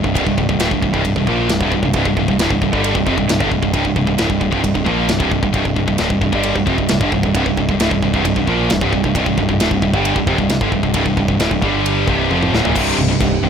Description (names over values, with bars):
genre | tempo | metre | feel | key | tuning
heavy metal | 133 BPM | 4/4 | straight | unclear | A4 = 441 Hz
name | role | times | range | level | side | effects
heavy high-gain guitar | riff | 0.0-13.5 s | C2 to Bb3 | -19 LUFS | right 11 dB | distortion
scooped high-gain guitar | riff | 0.0-13.5 s | C2 to Bb3 | -19 LUFS | left 10 dB | distortion
growling picked electric bass | bass | 0.0-13.5 s | C1 to Bb1 | -22 LUFS | equal | overdrive
tight metal drum kit | drums | 0.0-13.3 s | china cymbal, crash cymbal, kick drum, ride cymbal, snare drum, toms | -21 LUFS | equal | none
sweeping resonant pad | sustained chords | 12.8-13.5 s | Eb3 to G4 | -25 LUFS | equal | chorus
room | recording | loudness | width
small room ambience | none | -14 LUFS | side -7 dB against mid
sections
0.0-12.8 A section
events
drum fill 12.3-12.8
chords
0.0 C5; 11.6 G5; 12.1 Cm